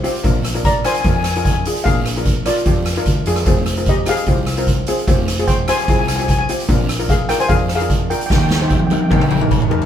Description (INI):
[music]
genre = calypso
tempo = 149 BPM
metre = 4/4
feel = straight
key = unclear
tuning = A4 = 440 Hz
[part]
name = steel pan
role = accompaniment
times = 0.0-9.8 s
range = C4 to C5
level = -22 LUFS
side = left 1 dB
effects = none
[part]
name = woody fretless electric bass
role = bass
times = 0.0-9.7 s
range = F1 to F2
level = -22 LUFS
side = equal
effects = none
[part]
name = street-band drum kit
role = drums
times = 0.0-9.9 s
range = hi-hat, kick drum, rim click, snare drum, toms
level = -17 LUFS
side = equal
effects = none
[part]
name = guiro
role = percussion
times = 0.2-9.6 s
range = none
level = -34 LUFS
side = right 4 dB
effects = none
[part]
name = steel pan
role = melody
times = 0.7-9.4 s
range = F4 to Bb5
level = -20 LUFS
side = left 2 dB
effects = none
[sound]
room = moderate stone room reverb, RT60 1.2 s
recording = band playing live in one room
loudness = -14 LUFS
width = side -10 dB against mid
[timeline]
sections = 0.0-9.9 A section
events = drum fill 8.3-9.9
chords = 0.2 Bb7; 3.5 Fmadd9; 6.7 Bb7; 8.3 Eb